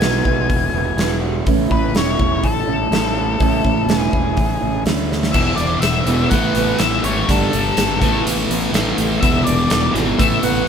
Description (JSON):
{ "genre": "quiet-loud alternative rock", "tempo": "124 BPM", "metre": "4/4", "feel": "straight", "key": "A major", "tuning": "A4 = 440 Hz", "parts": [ { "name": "octave-fuzz lead guitar", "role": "melody", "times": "0.0-10.7 s", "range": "A4 to G#5", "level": "-21 LUFS", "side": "left 5 dB", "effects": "distortion" }, { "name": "fingerpicked steel-string acoustic guitar", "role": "arpeggios", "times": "0.0-10.7 s", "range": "E2 to E4", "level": "-22 LUFS", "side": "right 7 dB", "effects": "none" }, { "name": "fuzz fingered electric bass", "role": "bass", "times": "0.0-10.6 s", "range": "E1 to D2", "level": "-23 LUFS", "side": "left 1 dB", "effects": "overdrive" }, { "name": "huge arena drum kit", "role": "drums", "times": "0.0-10.5 s", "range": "crash cymbal, hi-hat, kick drum, snare drum", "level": "-20 LUFS", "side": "left 1 dB", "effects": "none" }, { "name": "fuzz guitar", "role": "riff", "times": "5.3-10.7 s", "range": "E2 to A3", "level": "-19 LUFS", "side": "equal", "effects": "distortion" } ], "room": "light reverb", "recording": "band playing live in one room", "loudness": "-15 LUFS", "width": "side -7 dB against mid", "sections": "0.0-5.3 A section; 5.3-10.7 B section", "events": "drum fill 5.1", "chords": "0.0 Eadd9; 1.5 A; 5.3 E5; 6.3 Asus2; 7.3 Gsus2; 8.0 Asus2; 9.2 E; 10.2 Asus2", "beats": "0.00 0.48 0.97 | 1.46 1.94 2.43 2.92 | 3.40 3.89 4.37 4.86 | 5.34 5.83 6.32 6.80 | 7.28 7.77 8.25 8.73 | 9.22 9.70 10.18 10.66" }